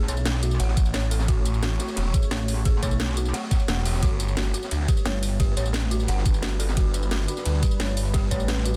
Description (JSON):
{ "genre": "dark technical drum and bass", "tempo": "175 BPM", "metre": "4/4", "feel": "straight", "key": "unclear", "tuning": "A4 = 440 Hz", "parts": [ { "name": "deep dark ambient pad", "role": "sustained chords", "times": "0.0-8.8 s", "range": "G3 to C#5", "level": "-38 LUFS", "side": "equal", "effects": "chorus, built-in reverb, sidechain pumping" }, { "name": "pulsing pluck wobble bass", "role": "bass", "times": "0.0-8.8 s", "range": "G1 to B1", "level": "-27 LUFS", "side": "equal", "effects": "chorus" }, { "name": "dark detuned synth bell", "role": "arpeggios", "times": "0.1-8.7 s", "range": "F#4 to F#5", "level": "-37 LUFS", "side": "equal", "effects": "chorus, sidechain pumping, delay" }, { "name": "crunchy breakbeat drum kit", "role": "drums", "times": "0.1-8.8 s", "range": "hi-hat, snare drum", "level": "-40 LUFS", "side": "equal", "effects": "high-pass filter on hats, high-pass filter on snare, high-pass filter on room" }, { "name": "drum and bass drum kit", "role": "drums", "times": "0.1-8.8 s", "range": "hi-hat, ride cymbal, snare drum, tambourine", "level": "-33 LUFS", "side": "equal", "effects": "none" }, { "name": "phased detuned saw bass", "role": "bass", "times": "0.6-7.6 s", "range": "E1 to D2", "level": "-27 LUFS", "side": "equal", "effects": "phaser, overdrive, sidechain pumping" }, { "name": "electronic kick drum", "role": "drums", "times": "0.8-8.4 s", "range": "none", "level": "-25 LUFS", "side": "equal", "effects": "none" } ], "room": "little or no reverb", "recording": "dense, heavily limited modern master", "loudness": "-24 LUFS", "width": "mono", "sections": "0.0-8.8 A section", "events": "none", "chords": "0.0 A; 4.0 G" }